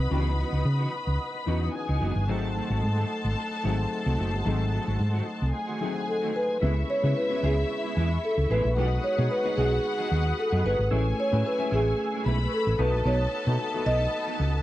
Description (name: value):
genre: disco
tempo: 112 BPM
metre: 4/4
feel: straight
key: C# minor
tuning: A4 = 440 Hz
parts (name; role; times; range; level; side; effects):
- dark studio string section; second line; 0.0-14.6 s; E4 to B5; -34 LUFS; left 2 dB; none
- dark grand piano; accompaniment; 0.0-14.6 s; E3 to E5; -35 LUFS; left 5 dB; none
- mellow electric guitar; accompaniment; 0.0-14.6 s; D#3 to B4; -37 LUFS; right 4 dB; ensemble chorus
- percussive tonewheel organ; sustained chords; 0.0-14.6 s; A3 to E6; -36 LUFS; equal; chorus vibrato, slow rotary speaker
- hollow-body short-scale fingered electric bass; bass; 0.0-14.6 s; F#1 to C#3; -25 LUFS; equal; none
- marimba with soft mallets; melody; 6.1-14.6 s; G#4 to D#5; -28 LUFS; equal; none
room: little or no reverb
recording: dry, close 1970s-style studio recording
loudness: -24 LUFS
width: side -15 dB against mid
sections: 0.0-6.6 A section; 6.6-14.6 B section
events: none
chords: 0.0 C#m11; 2.3 G#7b9; 6.6 C#m7; 8.8 G#m7/B; 10.9 Amaj7; 12.8 B7